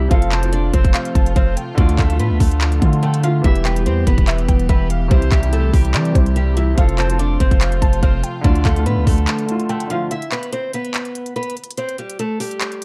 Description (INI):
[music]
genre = hip hop, trap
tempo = 144 BPM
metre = 4/4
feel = half-time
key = E phrygian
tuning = A4 = 439 Hz
[part]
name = picked acoustic archtop guitar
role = melody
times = 0.0-12.8 s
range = E3 to F5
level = -27 LUFS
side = equal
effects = low-pass filter
[part]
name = felt-muted upright piano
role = accompaniment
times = 0.0-10.1 s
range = C3 to A4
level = -27 LUFS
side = equal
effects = low-pass filter
[part]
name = warm studio string section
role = sustained chords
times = 0.0-10.1 s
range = C3 to G4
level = -30 LUFS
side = equal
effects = none
[part]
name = long sustained 808-style bass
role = bass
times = 0.0-9.3 s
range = E1 to E3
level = -20 LUFS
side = equal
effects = none
[part]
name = trap drum kit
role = drums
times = 0.1-12.8 s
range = handclaps, hi-hat, kick drum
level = -19 LUFS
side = equal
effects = none
[part]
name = warbly dusty pluck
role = second line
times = 0.3-10.1 s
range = C5 to A5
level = -33 LUFS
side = equal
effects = chorus, delay
[sound]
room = studio ambience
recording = dark, warm production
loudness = -17 LUFS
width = mono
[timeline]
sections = 0.0-10.1 A section; 10.1-12.8 B section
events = break 9.3-10.1, 10.1-12.8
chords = 0.1 F; 1.8 Dm; 3.4 Em; 5.1 C; 6.8 F; 8.4 Dm; 10.1 E5; 11.8 C5